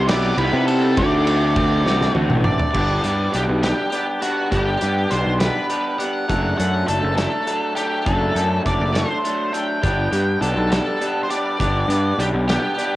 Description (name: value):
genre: indie rock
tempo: 68 BPM (dotted quarters)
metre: 6/8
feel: straight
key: G major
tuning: A4 = 440 Hz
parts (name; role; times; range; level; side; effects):
- octave-fuzz lead guitar; melody; 0.0-13.0 s; F#4 to G5; -24 LUFS; equal; distortion, tape echo
- electric guitar through a small old amp; riff; 0.0-13.0 s; C3 to A4; -23 LUFS; equal; cassette tape
- fuzz picked electric bass; bass; 0.0-12.6 s; F#1 to C3; -20 LUFS; equal; overdrive
- loose indie drum kit; drums; 0.1-12.9 s; crash cymbal, hi-hat, kick drum, ride cymbal, snare drum, toms; -25 LUFS; equal; cassette tape
room: small room ambience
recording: home recording on cassette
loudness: -17 LUFS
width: side -16 dB against mid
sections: 0.0-2.7 A section; 2.7-13.0 B section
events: drum fill 1.9-2.7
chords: 0.0 Cmaj7; 1.0 D7; 2.7 G; 6.3 D/F#; 9.8 G